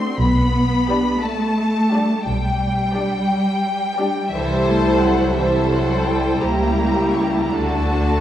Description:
classical, slow romantic movement for symphony orchestra; 58 BPM (dotted quarters); 12/8; rubato; G major; A4 = 440 Hz
rich studio violin section; melody; 0.0-8.2 s; E5 to C#6; -24 LUFS; left 2 dB
clear symphonic violin section; second line; 0.0-8.2 s; F#4 to D5; -24 LUFS; left 1 dB
clear symphonic viola section; accompaniment; 0.0-8.2 s; D3 to E4; -22 LUFS; equal
rich symphonic cello section; bass; 0.0-8.2 s; E3 to C4; -22 LUFS; equal
rich symphonic double bass section; bass; 0.2-8.2 s; B1 to D2; -22 LUFS; equal
wet scoring stage reverb, RT60 1.7 s; recorded in a church or concert hall, vinyl crackle; -16 LUFS; side -11 dB against mid
0.0-8.2 A section
0.2 G/B; 4.3 Am7/C; 6.4 C#dim7; 7.5 D

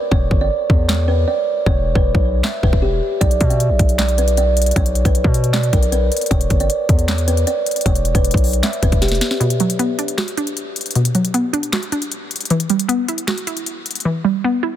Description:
hip hop, trap; 155 BPM; 4/4; half-time; A4 = 440 Hz
kalimba; melody; 0.0-9.2 s; G4 to E5; -20 LUFS; right 2 dB; low-pass filter, ping-pong delay
distorted 808-style bass; bass; 0.1-9.2 s; E1 to B2; -18 LUFS; equal; distortion
trap drum kit; drums; 0.1-14.0 s; handclaps, hi-hat, kick drum, snare drum; -19 LUFS; equal
hollow square pluck; accompaniment; 9.4-14.8 s; B2 to F#4; -18 LUFS; right 1 dB; chorus, low-pass filter
little or no reverb; dense, heavily limited modern master; -15 LUFS; side -11 dB against mid
0.0-14.8 A section
break 0.0-3.2, 9.4-14.8; hi-hats muted 1.7-3.2; drum fill 9.0-9.4; drums muted 14.1-14.8
0.1 E5; 3.2 Bm; 6.3 E5; 9.4 Bm; 12.5 Emadd9

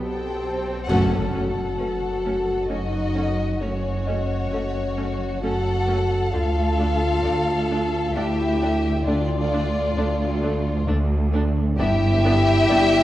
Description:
cinematic, suspense film score; 66 BPM; 3/4; straight; A4 = 440 Hz
rich studio violin section; melody; 0.0-13.0 s; C#5 to G5; -29 LUFS; left 2 dB
rich studio violin section; second line; 0.0-13.0 s; F4 to A4; -29 LUFS; left 2 dB
rich studio viola section; accompaniment; 0.0-12.8 s; D3 to D4; -30 LUFS; equal
mellow French horn section; sustained chords; 0.0-13.0 s; C#4 to G4; -25 LUFS; left 1 dB
warm studio cello section; bass; 0.0-13.0 s; D2 to B2; -28 LUFS; right 2 dB
warm studio double bass section; bass; 0.0-13.0 s; F#1 to D2; -27 LUFS; right 2 dB
pure sine sub bass; drone; 0.0-13.0 s; F#1 to D2; -29 LUFS; equal
swell and impact; sound effects; 0.0-3.6 s; -31 LUFS; equal
celesta; texture; 0.0-13.0 s; B4 to G5; -35 LUFS; left 2 dB
timpani; percussion; 0.9-2.2 s; F#2; -29 LUFS; left 1 dB
wet scoring stage reverb, RT60 1.9 s; worn, warbling old tape, cassette tape, warbly pitch drift; -20 LUFS; side -14 dB against mid
0.9-13.0 A section
swell 0.0-0.9; band accent 0.9-1.8; impact 0.9-3.6
0.0 Bsus2; 0.9 F#m; 6.3 Dm; 11.8 G

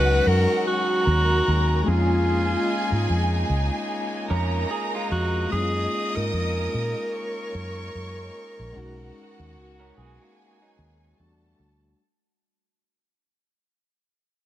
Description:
lush 1970s-style soul; 74 BPM; 4/4; swing 58% on 16ths; A4 = 440 Hz
warm tenor saxophone; melody; 0.0-11.2 s; F4 to Cb5; -26 LUFS; equal
warm symphonic violin section; second line; 0.0-12.0 s; Gb4 to Eb6; -30 LUFS; equal
overdriven tine electric piano; accompaniment; 0.0-12.0 s; Gb3 to Gb4; -31 LUFS; left 2 dB; medium tremolo
muted French horn section; sustained chords; 0.0-12.0 s; B2 to F#4; -36 LUFS; equal
vintage muted fingered electric bass; bass; 0.0-11.9 s; Bb1 to Bb2; -24 LUFS; equal
electric guitar through a small old amp; riff; 4.3-11.2 s; F#3 to Bb4; -32 LUFS; right 5 dB
light reverb, studio reverb; -21 LUFS; side -13 dB against mid
0.0-12.0 A section
fade-out 0.0-12.0
0.0 Ebm11; 1.9 Bbm7; 5.5 Gbmaj9; 8.8 B6; 11.2 Em11

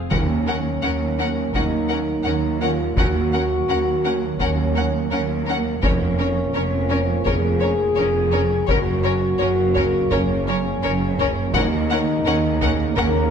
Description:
cinematic, epic orchestral film score; 84 BPM; 4/4; straight; Eb minor; A4 = 440 Hz
dark French horn section; sustained chords; 0.0-13.3 s; Db4 to Bb4; -23 LUFS; left 2 dB
warm symphonic violin section; melody; 0.1-13.1 s; Db5 to Gb5; -28 LUFS; left 4 dB
rich symphonic violin section; second line; 0.1-13.0 s; Bb4; -30 LUFS; left 4 dB
rich symphonic viola section; accompaniment; 0.1-13.1 s; Db4; -30 LUFS; right 2 dB
dark trombone section; sustained chords; 0.1-13.3 s; Db3 to Bb3; -29 LUFS; right 4 dB
rich studio cello section; bass; 0.1-13.3 s; Eb2 to Gb2; -26 LUFS; right 3 dB
rich symphonic double bass section; bass; 0.1-13.3 s; F1 to Eb2; -25 LUFS; right 3 dB
taiko ensemble; drums; 0.1-13.3 s; -25 LUFS; left 1 dB
timpani; percussion; 0.1-1.1 s; Eb3; -29 LUFS; equal
moderate scoring stage reverb, RT60 1.7 s; -18 LUFS; side -7 dB against mid
0.1-13.3 A section
0.1 Ebm7; 5.8 Bbm/F; 8.7 Gb; 11.5 Ebm7

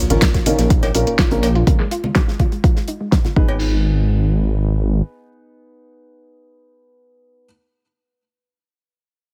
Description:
progressive house; 124 BPM; 4/4; straight; G# dorian; A4 = 440 Hz
soft round pluck; arpeggios; 0.0-7.4 s; G#3 to F#4; -28 LUFS; equal; ensemble chorus, sidechain pumping, digital delay
dark detuned saw bass; bass; 0.0-5.0 s; G#1 to A#1; -19 LUFS; equal; sidechain pumping
sub drop; sound effects; 0.0-1.7 s; -31 LUFS; equal
dark baby grand piano; stabs; 0.1-7.4 s; A#2 to B4; -26 LUFS; equal; sidechain pumping, digital delay
deep house drum kit; drums; 0.1-3.5 s; crash cymbal, hi-hat, snare drum; -24 LUFS; equal; low-pass filter on hats, low-pass filter on cymbals, low-pass filter on perc, low-pass filter on snare
congas and cowbell; percussion; 0.1-3.6 s; -29 LUFS; equal; sidechain pumping on perc
damped 70s drum kit; drums; 0.2-3.4 s; hi-hat, snare drum; -34 LUFS; equal; high-pass filter on hats, high-pass filter on snare, high-pass filter on room
electronic kick drum; drums; 0.2-3.5 s; -18 LUFS; equal
studio reverb; -17 LUFS; mono
0.0-3.6 A section; 3.6-7.5 B section
impact 0.0-1.7; filter sweep on drum 0.0-3.6; filter sweep on synth pluck 0.0-3.6
0.0 A#m; 1.7 N.C.; 3.4 G#m

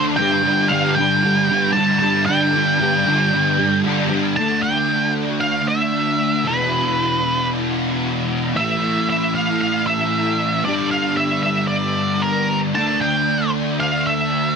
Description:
rock; 115 BPM; 4/4; straight; D minor; A4 = 442 Hz
octave-fuzz lead guitar; melody; 0.0-14.6 s; Bb4 to A5; -19 LUFS; right 2 dB; distortion, tape echo
fuzz guitar; riff; 0.0-14.6 s; E2 to D4; -19 LUFS; equal; distortion, ensemble chorus
light reverb, digital ambience; dense, heavily limited modern master; -16 LUFS; side -6 dB against mid
0.0-4.4 A section; 4.4-14.6 A section
0.2 G5; 4.4 Dsus2; 6.5 E5; 8.6 A5; 10.7 G5; 12.8 Dsus2

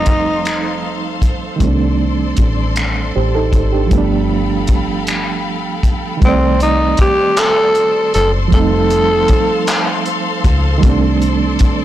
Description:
slow six-eight R&B; 52 BPM (dotted quarters); 6/8; straight; C dorian; A4 = 440 Hz
growling tenor saxophone; melody; 0.0-1.2, 6.2-10.0 s; C4 to A4; -15 LUFS; equal
reed electric piano; accompaniment; 0.0-11.8 s; Eb3 to D5; -18 LUFS; right 6 dB; overdrive, fast tremolo
bright studio string section; sustained chords; 0.0-11.8 s; A4 to C6; -24 LUFS; left 3 dB
deep dub fingered electric bass; bass; 0.0-11.7 s; F1 to Db2; -18 LUFS; left 1 dB; transformer saturation
cloth-damped thuddy drum kit; drums; 0.1-11.8 s; finger snaps, handclaps, hi-hat, kick drum; -15 LUFS; equal; soft clipping on snare
small room ambience; blown-out, overdriven recording, overdrive; -12 LUFS; side -13 dB against mid
0.0-6.2 A section; 6.2-11.8 B section
0.0 F7; 1.6 Cm69; 3.9 G9; 6.2 Cm69; 8.5 F7; 10.8 Cm69

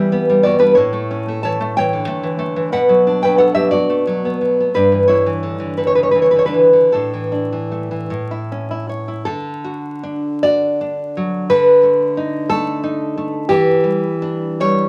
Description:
romantic piece for solo classical guitar; 50-62 BPM (dotted quarters); 6/8; rubato; D major; A4 = 440 Hz
nylon-string guitar; solo; 0.0-14.9 s; G2 to A5; -16 LUFS; equal
moderate club reverb, RT60 0.6 s; vinyl crackle; -16 LUFS; mono
0.0-9.3 A section; 9.3-14.9 B section
0.0 Em; 0.8 A7; 2.7 Bm; 4.7 Em7/G; 6.9 Asus4; 8.1 A; 9.3 D; 11.5 B7/D; 13.5 Em7

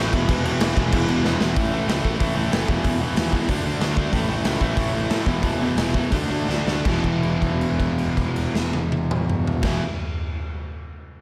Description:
punk rock; 159-189 BPM; 4/4; straight; A4 = 443 Hz
biting overdriven guitar; riff; 0.0-9.8 s; E2 to D4; -30 LUFS; equal; slapback echo
overdriven semi-hollow guitar; riff; 0.0-9.8 s; E2 to D4; -27 LUFS; equal
fuzz picked electric bass; bass; 0.0-9.8 s; E1 to A2; -29 LUFS; equal; overdrive
raw garage drum kit; drums; 0.1-9.7 s; crash cymbal, hi-hat, kick drum, snare drum, toms; -26 LUFS; equal
light reverb, studio ambience; -22 LUFS; mono
0.0-1.6 A section; 1.6-6.8 B section; 6.8-9.9 C section
drum fill 1.2-1.6, 6.5-6.8; slowing down 4.1-6.8; held note 6.8-9.6
0.1 E5; 1.6 A5; 2.7 E5; 3.5 D5; 4.1 A5; 5.3 E5; 6.1 D5; 6.8 E5

